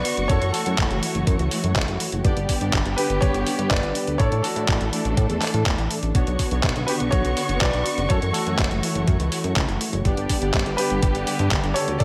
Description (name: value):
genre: italo disco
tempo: 123 BPM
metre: 4/4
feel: straight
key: unclear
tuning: A4 = 440 Hz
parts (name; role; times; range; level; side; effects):
- clear concert grand piano; melody; 0.0-12.0 s; F#4 to D5; -29 LUFS; equal; digital delay
- dark symphonic string section; sustained chords; 0.0-12.0 s; D3 to C#6; -30 LUFS; equal; none
- analog synth brass; stabs; 0.0-12.0 s; A3 to D5; -33 LUFS; equal; chorus, cassette tape, digital delay
- chorused synth bass; bass; 0.0-12.0 s; F#1 to A2; -28 LUFS; equal; none
- detuned 8-bit digital drum machine; drums; 0.1-12.0 s; handclaps, hi-hat; -29 LUFS; equal; gated reverb
- electronic kick drum; drums; 0.3-12.0 s; none; -25 LUFS; equal; none
room: light reverb, digital ambience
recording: none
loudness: -22 LUFS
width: mono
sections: 0.0-12.0 A section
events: none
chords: 0.3 F#m7; 2.2 G; 4.2 Dsus2/A; 6.1 Bmadd9; 8.1 F#m7; 10.1 G